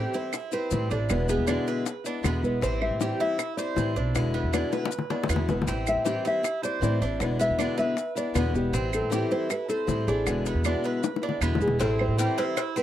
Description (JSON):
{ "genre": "latin, Cuban son and guajira", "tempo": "157 BPM", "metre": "4/4", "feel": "straight", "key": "A minor", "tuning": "A4 = 435 Hz", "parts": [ { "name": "nylon-string guitar", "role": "melody", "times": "0.0-12.8 s", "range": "G4 to E5", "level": "-30 LUFS", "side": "equal", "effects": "none" }, { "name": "picked acoustic archtop guitar", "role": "accompaniment", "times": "0.0-12.8 s", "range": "B2 to E4", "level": "-30 LUFS", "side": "left 4 dB", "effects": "none" }, { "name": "Cuban tres", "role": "arpeggios", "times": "0.0-12.8 s", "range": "B3 to C5", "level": "-33 LUFS", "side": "right 6 dB", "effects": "none" }, { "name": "upright bass", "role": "bass", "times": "0.0-12.3 s", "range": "E1 to A2", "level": "-28 LUFS", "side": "right 1 dB", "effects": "none" }, { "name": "bongos and cowbell", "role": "percussion", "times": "0.1-12.8 s", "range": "none", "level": "-32 LUFS", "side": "left 6 dB", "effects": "none" }, { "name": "maracas", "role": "percussion", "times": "0.1-12.8 s", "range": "none", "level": "-39 LUFS", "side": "left 17 dB", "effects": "none" }, { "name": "claves", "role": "percussion", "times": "0.3-12.8 s", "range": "none", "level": "-33 LUFS", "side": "right 28 dB", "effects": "none" } ], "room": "little or no reverb", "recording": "dry, close 1970s-style studio recording", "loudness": "-24 LUFS", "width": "side -11 dB against mid", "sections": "0.0-11.8 A section; 11.8-12.8 A section", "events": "drum fill 4.7-5.7, 11.0-11.8", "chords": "0.0 Am7; 1.1 E7; 2.6 Am7; 4.2 E7; 5.7 Am7; 7.2 E7; 8.7 Am7; 10.3 E7; 11.8 Am7" }